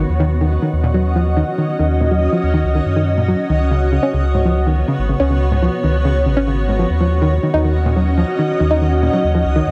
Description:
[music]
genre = IDM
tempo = 141 BPM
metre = 4/4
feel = straight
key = Eb minor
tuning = A4 = 439 Hz
[part]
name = granular cloud pad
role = sustained chords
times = 0.0-9.7 s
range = Cb4 to Eb5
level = -22 LUFS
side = equal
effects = built-in reverb
[part]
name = soft round pluck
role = arpeggios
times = 0.0-9.6 s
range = Ab2 to Eb4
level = -21 LUFS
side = equal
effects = chorus, digital delay
[part]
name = warm sub bass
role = bass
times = 0.0-9.7 s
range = Ab1 to Gb2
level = -19 LUFS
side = equal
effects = none
[sound]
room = moderate huge ambient reverb, RT60 7.6 s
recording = none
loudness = -16 LUFS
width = mono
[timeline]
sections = 0.0-9.7 A section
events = none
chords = 0.1 Ebm7; 3.5 Db7sus4; 6.9 Ebm7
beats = | 0.09 0.52 0.94 1.37 | 1.79 2.22 2.64 3.07 | 3.49 3.92 4.34 4.77 | 5.20 5.62 6.05 6.47 | 6.90 7.32 7.75 8.17 | 8.60 9.03 9.45

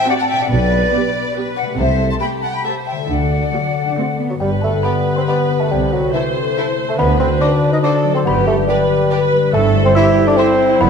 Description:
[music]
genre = cinematic, playful, whimsical film cue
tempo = 140 BPM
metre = 3/4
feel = straight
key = G major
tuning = A4 = 439 Hz
[part]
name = rich symphonic violin section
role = melody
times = 0.0-10.5 s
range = G4 to E5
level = -30 LUFS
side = left 3 dB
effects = none
[part]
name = rich chamber violin section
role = second line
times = 0.0-10.5 s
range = E4 to A5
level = -26 LUFS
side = left 2 dB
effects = none
[part]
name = small flute group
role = second line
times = 0.0-4.2 s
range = D5 to C6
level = -20 LUFS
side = left 3 dB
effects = none
[part]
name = concert harp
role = arpeggios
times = 0.0-10.9 s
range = F#2 to C5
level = -21 LUFS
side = left 8 dB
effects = none
[part]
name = rich symphonic viola section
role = accompaniment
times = 0.1-10.9 s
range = A3 to C5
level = -22 LUFS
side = right 2 dB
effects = none
[part]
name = dark symphonic cello section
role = bass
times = 0.5-10.9 s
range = F#2 to D4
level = -24 LUFS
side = right 2 dB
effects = none
[part]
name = mellow tuba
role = bass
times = 0.5-3.4 s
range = B1 to D2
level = -23 LUFS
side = right 3 dB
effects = none
[part]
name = rich chamber double bass section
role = bass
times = 0.5-10.9 s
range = F#1 to D2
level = -22 LUFS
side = right 4 dB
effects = none
[part]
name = trough xylophone with soft rubber mallets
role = melody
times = 4.3-10.9 s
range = E5 to E6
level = -26 LUFS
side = left 3 dB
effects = none
[part]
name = warm clarinet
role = second line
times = 4.3-10.9 s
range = E4 to E5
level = -24 LUFS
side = equal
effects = none
[part]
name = clear bassoon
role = accompaniment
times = 4.3-10.9 s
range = E3 to E4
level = -18 LUFS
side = right 2 dB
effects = none
[part]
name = dark French horn section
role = sustained chords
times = 4.4-10.9 s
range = E4 to D5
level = -22 LUFS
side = left 3 dB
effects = none
[sound]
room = wet scoring stage reverb, RT60 1.8 s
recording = dark, warm production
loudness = -13 LUFS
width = side -6 dB against mid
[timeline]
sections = 0.0-4.4 A section; 4.4-10.9 B section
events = none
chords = 0.0 D7/A; 0.5 G/B; 1.8 Am7/C; 3.1 D; 4.4 G; 5.7 Am/C; 7.0 D7b9; 8.3 G; 9.5 Am7/G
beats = 0.09 | 0.51 0.93 1.36 | 1.79 2.21 2.65 | 3.09 3.53 3.97 | 4.41 4.84 5.27 | 5.70 6.13 6.56 | 6.98 7.41 7.83 | 8.26 8.68 9.11 | 9.53 9.95 10.38 | 10.80

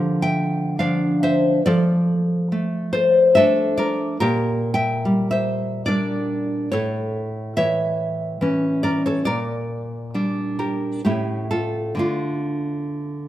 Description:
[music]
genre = romantic piece for solo classical guitar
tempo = 70 BPM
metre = 3/4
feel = rubato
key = D minor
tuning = A4 = 439 Hz
[part]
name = nylon-string guitar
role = solo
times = 0.0-13.3 s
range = A2 to G5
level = -19 LUFS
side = equal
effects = none
[sound]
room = moderate recital hall reverb, RT60 1.6 s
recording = minimal, uncompressed stereo recording, lossy compression artefacts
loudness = -19 LUFS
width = side -13 dB against mid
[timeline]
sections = 0.0-13.3 A section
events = none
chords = 0.0 Dm; 1.6 Dm/F; 4.2 Gm/Bb; 6.7 A; 9.3 Gm/Bb; 11.0 A7; 12.0 Dm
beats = 0.78 | 1.65 2.50 3.35 | 4.19 5.04 5.87 | 6.72 7.57 8.40 | 9.26 10.14 11.05 | 11.99 12.94

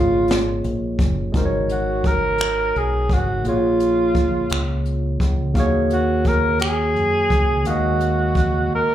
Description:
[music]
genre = slow six-eight R&B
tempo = 57 BPM (dotted quarters)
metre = 6/8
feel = straight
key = Eb minor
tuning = A4 = 438 Hz
[part]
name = breathy tenor saxophone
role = melody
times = 0.0-8.9 s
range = F4 to Bb4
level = -20 LUFS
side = right 1 dB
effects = slapback echo, plate reverb
[part]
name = barky tine electric piano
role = accompaniment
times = 0.0-8.9 s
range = Bb2 to Gb5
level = -23 LUFS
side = equal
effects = overdrive, plate reverb, slapback echo
[part]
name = deep dub fingered electric bass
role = bass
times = 0.0-8.7 s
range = Gb1 to Gb2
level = -24 LUFS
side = equal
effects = none
[part]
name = jazz brush drum kit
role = drums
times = 0.3-8.5 s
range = finger snaps, hi-hat, kick drum, snare drum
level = -23 LUFS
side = equal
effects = none
[sound]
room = light reverb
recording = live gig heard through the venue's PA, club reverb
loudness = -17 LUFS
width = side -11 dB against mid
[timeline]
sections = 0.0-1.3 A section; 1.3-8.9 B section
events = tenor saxophone solo 0.0-1.3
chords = 0.0 Bbm7; 1.3 Ab7sus4; 3.4 Bbm7; 5.5 Ebm11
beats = 0.29 | 1.34 2.39 | 3.44 4.50 | 5.55 6.60 | 7.66 8.71

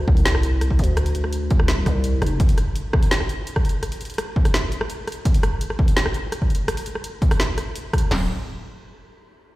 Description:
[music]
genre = half-time drum and bass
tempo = 168 BPM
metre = 4/4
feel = half-time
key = D minor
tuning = A4 = 440 Hz
[part]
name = growling 808-style bass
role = bass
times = 0.0-2.4, 8.1-8.3 s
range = D1 to D2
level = -20 LUFS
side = equal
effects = none
[part]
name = industrial drum kit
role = drums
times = 0.1-8.2 s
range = crash cymbal, kick drum, snare drum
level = -19 LUFS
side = equal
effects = none
[part]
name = drum and bass drum kit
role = drums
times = 0.2-8.1 s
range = hi-hat, rim click, snare drum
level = -26 LUFS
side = equal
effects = overdrive
[sound]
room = little or no reverb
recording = played on a big sound system in a bare room, large studio reverb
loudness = -19 LUFS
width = side -18 dB against mid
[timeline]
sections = 0.0-8.1 A section; 8.1-9.5 B section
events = none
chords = none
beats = 0.25 0.61 | 0.97 1.32 1.68 2.04 | 2.40 2.75 3.11 3.47 | 3.83 4.18 4.54 4.90 | 5.25 5.61 5.97 6.33 | 6.68 7.04 7.40 7.75 | 8.11

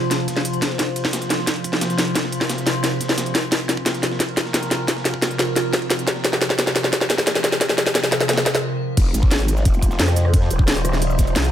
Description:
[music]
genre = dark technical drum and bass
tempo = 176 BPM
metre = 4/4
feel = straight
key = unclear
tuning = A4 = 440 Hz
[part]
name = metallic inharmonic drone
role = sustained chords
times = 0.0-11.5 s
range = C3 to C5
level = -25 LUFS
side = equal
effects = chorus, built-in reverb, phaser, sidechain pumping
[part]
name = breakbeat sampler-style drum kit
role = drums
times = 0.1-11.5 s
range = ride cymbal, snare drum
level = -31 LUFS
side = equal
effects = overdrive, high-pass filter on cymbals, high-pass filter on snare, high-pass filter on room
[part]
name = drum and bass drum kit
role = drums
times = 0.1-11.5 s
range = cabasa, crash cymbal, hi-hat, rim click, snare drum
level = -20 LUFS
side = equal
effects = none
[part]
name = electronic kick drum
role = drums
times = 0.3-11.3 s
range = none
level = -19 LUFS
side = equal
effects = high-pass filter on kick, high-pass filter on room
[part]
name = growl bass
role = bass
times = 9.0-11.5 s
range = Eb1 to F2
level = -19 LUFS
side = equal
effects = chorus, overdrive, sidechain pumping
[sound]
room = light reverb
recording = none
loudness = -17 LUFS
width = side -10 dB against mid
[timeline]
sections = 0.0-9.0 A section; 9.0-11.5 B section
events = build-up 0.0-9.0; drum fill 0.0-8.6; stop 8.6-9.0; drop 9.0-11.5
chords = 0.0 F5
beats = 0.11 0.45 | 0.79 1.13 1.47 1.81 | 2.15 2.50 2.84 3.18 | 3.52 3.86 4.20 4.54 | 4.88 5.22 5.56 5.90 | 6.25 6.59 6.93 7.27 | 7.61 7.95 8.29 8.63 | 8.97 9.31 9.65 9.99 | 10.34 10.68 11.02 11.36

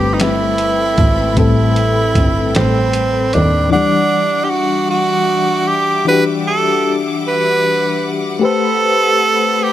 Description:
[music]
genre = slow six-eight R&B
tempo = 51 BPM (dotted quarters)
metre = 6/8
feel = straight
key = E minor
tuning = A4 = 440 Hz
[part]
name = breathy tenor saxophone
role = melody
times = 0.0-9.7 s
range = C4 to B4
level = -15 LUFS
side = right 3 dB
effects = tape echo
[part]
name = FM electric piano with tremolo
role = accompaniment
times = 0.0-9.7 s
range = A2 to F#5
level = -18 LUFS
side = left 5 dB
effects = none
[part]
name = clear studio string section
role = sustained chords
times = 0.0-9.7 s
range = G3 to D6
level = -26 LUFS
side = left 2 dB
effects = none
[part]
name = rich double bass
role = bass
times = 0.0-3.7 s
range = G1 to D#2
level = -17 LUFS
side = equal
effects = none
[part]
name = dusty soul sampler-style drum kit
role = drums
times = 0.2-3.5 s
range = hi-hat, kick drum, snare drum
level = -17 LUFS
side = right 1 dB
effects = none
[sound]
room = light reverb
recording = none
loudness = -12 LUFS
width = side -12 dB against mid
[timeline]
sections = 0.0-3.7 A section; 3.7-9.7 A section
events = kick muted 2.5-3.7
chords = 0.0 Am9; 3.7 Em9; 8.4 Am9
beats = 0.19 | 1.37 2.54 | 3.72 4.90 | 6.08 7.25 | 8.43 9.60

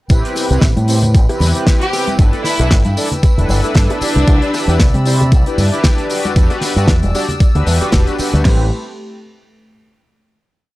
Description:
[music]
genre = nu-disco, nu disco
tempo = 115 BPM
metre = 4/4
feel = swing 56% on 16ths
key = A dorian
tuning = A4 = 440 Hz
[part]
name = mellow synth brass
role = accompaniment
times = 0.1-8.7 s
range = C4 to D5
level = -20 LUFS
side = equal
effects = chorus, sidechain pumping, tape echo
[part]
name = dark studio string section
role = sustained chords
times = 0.1-8.7 s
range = A3 to E6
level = -27 LUFS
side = left 2 dB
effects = sidechain pumping
[part]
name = fingered electric bass with an envelope filter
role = bass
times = 0.1-8.7 s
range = E1 to C3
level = -15 LUFS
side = equal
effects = tube saturation
[part]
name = damped 70s drum kit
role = drums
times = 0.1-8.4 s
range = hi-hat, snare drum, tambourine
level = -20 LUFS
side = equal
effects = none
[part]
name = pop drum kit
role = drums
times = 0.1-8.6 s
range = crash cymbal, kick drum, snare drum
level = -12 LUFS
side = equal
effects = overdrive
[part]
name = tambourine, bongos and congas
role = percussion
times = 0.1-8.4 s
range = none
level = -24 LUFS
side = left 1 dB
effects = none
[part]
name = bright symphonic violin section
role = melody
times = 1.8-4.8 s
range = D4 to G4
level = -21 LUFS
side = equal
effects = tape echo
[sound]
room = studio reverb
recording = dry, gritty hardware recording, transformer saturation, cassette tape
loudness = -11 LUFS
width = side -18 dB against mid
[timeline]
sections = 0.1-8.4 drop; 8.4-10.5 final chord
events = drop 0.1-8.4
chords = 0.1 Am9; 2.2 G6; 4.0 Cmaj9; 6.1 Em7; 8.4 Am9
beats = | 0.10 0.62 1.15 1.67 | 2.19 2.71 3.23 3.75 | 4.28 4.80 5.32 5.84 | 6.36 6.88 7.41 7.93 | 8.45

